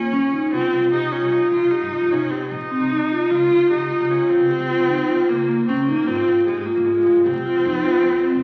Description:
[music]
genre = contemporary instrumental, chamber music in an uneven meter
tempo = 152 BPM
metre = 7/4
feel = straight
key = Bb dorian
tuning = A4 = 438 Hz
[part]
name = clear viola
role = second line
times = 0.0-8.4 s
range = Ab3 to F4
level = -27 LUFS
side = equal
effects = none
[part]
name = vibraphone with soft mallets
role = arpeggios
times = 0.0-8.4 s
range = Bb3 to G4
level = -20 LUFS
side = equal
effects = none
[part]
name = upright bass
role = bass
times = 0.0-8.4 s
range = F1 to Db3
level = -35 LUFS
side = equal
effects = none
[sound]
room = wet scoring stage reverb, RT60 1.6 s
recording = very old 78 rpm record, vinyl crackle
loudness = -19 LUFS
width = mono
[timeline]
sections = 0.0-8.4 A section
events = none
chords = 0.0 Eb5; 0.5 Cm; 3.3 Bbm/Db; 6.1 Ab; 7.3 F7(no3)

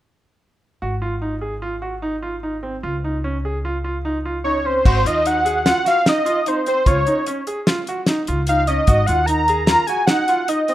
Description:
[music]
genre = progressive instrumental, band music in an uneven meter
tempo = 149 BPM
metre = 5/4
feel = straight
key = Ab mixolydian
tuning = A4 = 438 Hz
[part]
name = bright concert grand piano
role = arpeggios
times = 0.8-10.7 s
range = C4 to Ab4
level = -24 LUFS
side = right 2 dB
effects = none
[part]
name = upright bass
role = bass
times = 0.8-9.7 s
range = Ab1 to Eb2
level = -24 LUFS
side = equal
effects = none
[part]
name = wide unison lead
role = melody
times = 4.4-10.7 s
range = C5 to Bb5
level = -17 LUFS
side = equal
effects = none
[part]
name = damped 70s drum kit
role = drums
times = 4.9-10.7 s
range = crash cymbal, hi-hat, kick drum, snare drum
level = -19 LUFS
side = left 1 dB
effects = none
[sound]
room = light reverb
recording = rough home demo mix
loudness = -17 LUFS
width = side -13 dB against mid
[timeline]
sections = 0.8-4.9 A section; 4.9-10.7 B section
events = none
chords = 0.8 Ab5; 2.8 Db; 4.9 Ab7; 6.9 Db; 8.9 Ab7(no3)

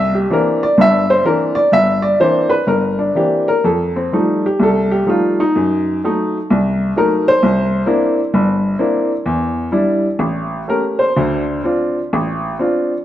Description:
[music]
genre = solo jazz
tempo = 127 BPM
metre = 4/4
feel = swing 66% on 8ths, rubato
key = C mixolydian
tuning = A4 = 440 Hz
[part]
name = warm upright piano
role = solo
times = 0.0-12.9 s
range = G1 to E5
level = -13 LUFS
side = equal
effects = none
[sound]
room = wet echo chamber reverb, RT60 1.8 s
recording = worn, warbling old tape, cassette tape, warbly pitch drift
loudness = -13 LUFS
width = side -12 dB against mid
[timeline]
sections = 0.0-13.0 A section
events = upright piano solo 0.0-13.0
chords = 0.0 C9; 3.6 F9; 5.6 F#dim7; 7.4 C9; 9.3 Em7; 10.2 A7; 11.2 Dm7

